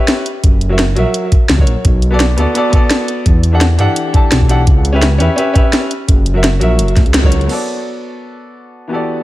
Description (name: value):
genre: liquid drum and bass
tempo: 170 BPM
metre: 4/4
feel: swing 53% on 16ths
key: B minor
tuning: A4 = 439 Hz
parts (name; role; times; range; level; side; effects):
- clear grand piano; accompaniment; 0.0-9.2 s; E3 to A5; -17 LUFS; equal; analog delay
- drum and bass drum kit; drums; 0.1-7.6 s; crash cymbal, hi-hat, snare drum; -17 LUFS; equal; studio ambience
- dark detuned saw bass; bass; 0.4-7.5 s; F#1 to G2; -13 LUFS; equal; none
- electronic kick drum; drums; 0.4-7.3 s; none; -11 LUFS; equal; studio ambience
room: light reverb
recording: echo-heavy mix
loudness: -10 LUFS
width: side -16 dB against mid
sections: 0.0-7.5 A section; 7.5-9.2 B section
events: band accent 7.1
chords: 0.3 F#7; 1.9 Bm7; 3.3 Em11; 4.7 C#m7b5; 5.9 F#7; 7.5 Bm7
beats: 0.09 | 0.44 0.79 1.14 1.50 | 1.85 2.20 2.56 2.91 | 3.26 3.61 3.97 4.32 | 4.67 5.03 5.38 5.73 | 6.08 6.44 6.79 7.14 | 7.50 7.85 8.20 8.55 | 8.91